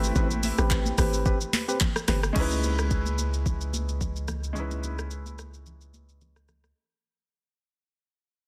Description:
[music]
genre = amapiano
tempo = 109 BPM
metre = 4/4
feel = swing 55% on 16ths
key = unclear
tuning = A4 = 443 Hz
[part]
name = analog pluck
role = melody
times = 0.0-2.0 s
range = E4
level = -46 LUFS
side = equal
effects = none
[part]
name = bright baby grand piano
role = accompaniment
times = 0.0-6.8 s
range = G#3 to B4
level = -36 LUFS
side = equal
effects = low-pass filter
[part]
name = hollow log drum bass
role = bass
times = 0.0-2.3 s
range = G1 to A1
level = -30 LUFS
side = equal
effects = none
[part]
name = smooth R&B drum kit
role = drums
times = 0.0-6.8 s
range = crash cymbal, handclaps, hi-hat, kick drum, rim click, shaker, snare drum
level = -30 LUFS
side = equal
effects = soft clipping on snare
[part]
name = percussive organ stab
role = stabs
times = 0.2-2.2 s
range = C4 to B4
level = -35 LUFS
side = equal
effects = chorus, digital delay
[part]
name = congas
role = percussion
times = 0.2-6.6 s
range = none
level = -39 LUFS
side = equal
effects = none
[part]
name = sub bass with octave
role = bass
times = 2.4-6.7 s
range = C#2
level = -32 LUFS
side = equal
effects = none
[sound]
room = digital ambience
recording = dense, heavily limited modern master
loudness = -27 LUFS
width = mono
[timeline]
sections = 0.0-2.4 A section; 2.4-6.8 B section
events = drop 0.0-2.4; fade-out 2.4-6.8; break 4.6-6.8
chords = 0.0 Am9; 2.4 C#m9

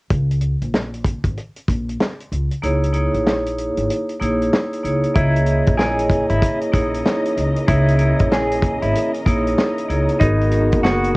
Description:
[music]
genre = hip hop, boom-bap hip-hop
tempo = 95 BPM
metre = 4/4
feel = swing 62% on 16ths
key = C# dorian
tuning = A4 = 439 Hz
[part]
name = upright bass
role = bass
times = 0.1-11.2 s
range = F#1 to C#2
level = -20 LUFS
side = equal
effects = none
[part]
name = warm soul drum kit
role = drums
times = 0.1-11.2 s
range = hi-hat, kick drum, snare drum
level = -20 LUFS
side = equal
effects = vintage 12-bit sampler grit, cassette tape
[part]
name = vibraphone with medium hard mallets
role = accompaniment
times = 2.6-11.2 s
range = A#3 to D#5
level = -20 LUFS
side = right 1 dB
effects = cassette tape, high-pass filter, low-pass filter
[part]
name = clean electric guitar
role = melody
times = 5.2-11.2 s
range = D#4 to G#4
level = -23 LUFS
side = equal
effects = tremolo, high-pass filter, low-pass filter, cassette tape
[part]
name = muted studio string section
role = sustained chords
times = 5.2-11.2 s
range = B2 to D#5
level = -30 LUFS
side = left 1 dB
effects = high-pass filter, low-pass filter, cassette tape
[sound]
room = little or no reverb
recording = home recording on cassette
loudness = -16 LUFS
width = side -24 dB against mid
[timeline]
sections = 0.1-5.2 A section; 5.2-11.2 B section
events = kick muted 2.6-5.2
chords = 0.1 C#m69; 10.2 G#m9

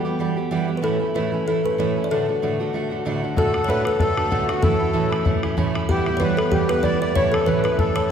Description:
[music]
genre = celtic folk, Celtic reel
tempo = 190 BPM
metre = 4/4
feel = swing 55% on 8ths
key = D major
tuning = A4 = 438 Hz
[part]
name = kalimba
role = melody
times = 0.0-8.1 s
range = F#4 to D5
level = -23 LUFS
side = left 2 dB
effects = none
[part]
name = fingerpicked steel-string acoustic guitar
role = accompaniment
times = 0.0-8.1 s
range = D2 to G4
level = -23 LUFS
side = right 4 dB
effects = none
[part]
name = accordion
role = second line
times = 3.4-8.1 s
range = F#4 to D5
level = -26 LUFS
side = left 2 dB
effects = light tremolo tuning
[part]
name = bodhran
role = percussion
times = 3.4-8.0 s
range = none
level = -24 LUFS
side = left 2 dB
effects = none
[sound]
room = wet scoring stage reverb, RT60 1.8 s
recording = recorded in a church or concert hall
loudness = -18 LUFS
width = side -8 dB against mid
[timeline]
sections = 0.0-3.4 A section; 3.4-8.1 A section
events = none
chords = 0.0 Em; 0.8 A; 2.1 D; 4.6 A; 5.9 Em; 7.2 A

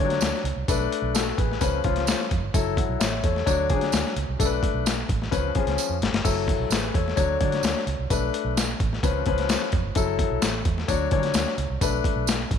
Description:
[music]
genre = uptempo 1960s-style soul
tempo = 129 BPM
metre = 4/4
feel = straight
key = F# minor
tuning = A4 = 438 Hz
[part]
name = clear concert grand piano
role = accompaniment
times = 0.0-12.3 s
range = E3 to F#5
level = -26 LUFS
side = left 7 dB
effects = none
[part]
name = vintage muted fingered electric bass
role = bass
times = 0.0-12.6 s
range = F#1 to D3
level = -28 LUFS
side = right 3 dB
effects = none
[part]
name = boom bap sampler-style drum kit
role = drums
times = 0.1-12.6 s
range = crash cymbal, hi-hat, kick drum, snare drum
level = -25 LUFS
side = left 1 dB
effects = overdrive
[part]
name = tambourine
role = percussion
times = 0.2-12.4 s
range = none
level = -34 LUFS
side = right 15 dB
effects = none
[sound]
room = moderate echo chamber reverb, RT60 1.9 s, small room ambience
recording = 1960s-style stereo with parts hard left and right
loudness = -22 LUFS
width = side -8 dB against mid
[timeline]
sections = 0.0-12.6 A section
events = drum fill 5.8-6.2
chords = 0.0 Dmaj7; 0.7 Bm7; 1.6 C#7; 2.5 F#m7; 3.5 Dmaj7; 4.4 Bm7; 5.3 C#7; 6.2 F#m7; 7.2 Dmaj7; 8.1 Bm7; 9.0 C#7; 10.0 F#m7; 10.9 Dmaj7; 11.8 Bm7

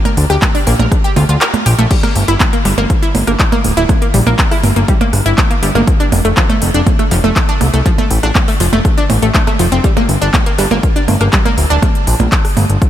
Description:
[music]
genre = melodic techno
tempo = 121 BPM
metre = 4/4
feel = straight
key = G dorian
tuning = A4 = 440 Hz
[part]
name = analog pluck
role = arpeggios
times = 0.1-11.8 s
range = F3 to Bb5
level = -16 LUFS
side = equal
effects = chorus, sidechain pumping, analog delay
[part]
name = techno drum kit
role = drums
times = 0.1-12.9 s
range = crash cymbal, handclaps, hi-hat, percussion blips, rim click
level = -17 LUFS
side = right 2 dB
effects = none
[part]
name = fat analog bass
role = bass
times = 0.2-12.8 s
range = D1 to D2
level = -13 LUFS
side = equal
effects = sidechain pumping
[part]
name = electronic kick drum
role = drums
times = 0.4-12.9 s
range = none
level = -14 LUFS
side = equal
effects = none
[sound]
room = light reverb, digital ambience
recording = none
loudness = -10 LUFS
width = side -11 dB against mid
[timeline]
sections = 0.0-12.9 A section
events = kick drops out 1.4-1.9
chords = 0.0 Bb; 1.9 Gm; 5.9 F; 9.8 Gm

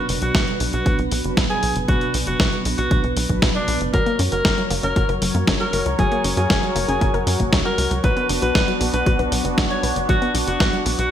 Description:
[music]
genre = italo disco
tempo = 117 BPM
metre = 4/4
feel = straight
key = unclear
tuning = A4 = 441 Hz
[part]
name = bright alto saxophone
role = melody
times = 0.0-11.1 s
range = D4 to C#5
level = -24 LUFS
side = equal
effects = vintage 12-bit sampler grit, digital delay
[part]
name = mellow synth brass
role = stabs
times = 0.0-3.9 s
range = B2 to B4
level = -26 LUFS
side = right 3 dB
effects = chorus
[part]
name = tight sequencer bass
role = bass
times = 0.1-11.1 s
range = F#1 to F#2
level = -24 LUFS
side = equal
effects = none
[part]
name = dusty soul sampler-style drum kit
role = drums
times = 0.1-11.1 s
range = hi-hat, snare drum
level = -23 LUFS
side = equal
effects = studio reverb
[part]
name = electronic kick drum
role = drums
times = 0.3-10.7 s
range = none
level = -22 LUFS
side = equal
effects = studio reverb
[part]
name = warm analog pad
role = sustained chords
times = 3.9-11.1 s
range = F#3 to C#5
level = -25 LUFS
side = left 1 dB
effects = chorus, vintage 12-bit sampler grit
[part]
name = wide unison pluck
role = arpeggios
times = 3.9-11.0 s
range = F#3 to B4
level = -27 LUFS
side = left 3 dB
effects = digital delay
[sound]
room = moderate lush hall reverb, RT60 1.6 s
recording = bright 1980s-style digital production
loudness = -17 LUFS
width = side -10 dB against mid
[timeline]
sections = 0.0-11.1 A section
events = none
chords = 0.0 Bm; 3.9 F#; 8.0 Bm

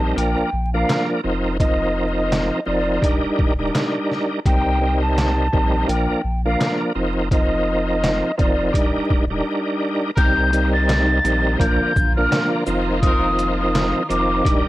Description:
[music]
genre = hip hop, boom-bap hip-hop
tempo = 84 BPM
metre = 4/4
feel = swing 58% on 16ths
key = unclear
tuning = A4 = 440 Hz
[part]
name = breathy mellow jazz flute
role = melody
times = 0.0-14.6 s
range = D5 to A6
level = -23 LUFS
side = equal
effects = high-pass filter, low-pass filter
[part]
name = bright tonewheel organ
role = accompaniment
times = 0.0-14.7 s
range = F3 to Bb4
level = -21 LUFS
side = equal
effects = overdrive, chorus vibrato, fast rotary speaker, high-pass filter, low-pass filter
[part]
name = warm sub bass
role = bass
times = 0.0-14.6 s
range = Eb1 to C2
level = -23 LUFS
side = equal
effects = none
[part]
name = trip hop sampler-style drum kit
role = drums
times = 0.2-14.7 s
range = handclaps, hi-hat, kick drum, shaker, snare drum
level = -20 LUFS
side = equal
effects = none
[part]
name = warm studio string section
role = sustained chords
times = 10.2-14.7 s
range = C3 to D5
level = -30 LUFS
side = left 1 dB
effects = high-pass filter, low-pass filter
[part]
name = brilliant trumpet section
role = stabs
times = 10.2-13.3 s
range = Eb4 to Bb4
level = -32 LUFS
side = left 1 dB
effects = high-pass filter, low-pass filter, analog delay
[sound]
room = light reverb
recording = dry, gritty hardware recording, vinyl crackle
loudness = -17 LUFS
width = side -16 dB against mid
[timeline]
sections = 0.0-10.2 A section; 10.2-14.7 B section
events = break 9.5-10.2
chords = 0.2 Bb; 1.2 F7sus4; 3.0 Ebmaj7; 4.5 Cm7; 5.9 Bb; 7.0 F7sus4; 8.7 Ebmaj7; 10.2 Cm7; 11.6 Bb; 12.7 F7sus4

